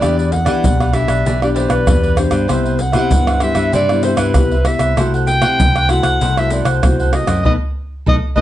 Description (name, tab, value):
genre	samba and choro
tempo	97 BPM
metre	4/4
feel	straight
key	E minor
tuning	A4 = 439 Hz
part	mellow clarinet	melody	0.0-8.4 s	B4 to G5	-19 LUFS	equal	slapback echo
part	cavaquinho	accompaniment	0.0-8.4 s	E4 to F#5	-24 LUFS	right 5 dB	none
part	nylon-string guitar	accompaniment	0.0-8.4 s	B2 to G4	-21 LUFS	left 5 dB	none
part	modern bright picked electric bass	bass	0.0-8.4 s	B1 to E3	-18 LUFS	equal	none
part	egg shaker, surdo, pandeiro and tamborim	percussion	0.0-8.4 s	none	-17 LUFS	equal	none
room	light reverb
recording	nothing above 10.3 kHz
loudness	-12 LUFS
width	side -13 dB against mid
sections	0.0-8.4 A section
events	band accent 7.5-8.4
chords	0.0 Em7; 2.5 Cmaj7; 5.0 F#m7b5/C; 7.5 B7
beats	| 0.03 0.65 1.26 1.88 | 2.50 3.12 3.74 4.36 | 4.98 5.59 6.21 6.83 | 7.45 8.07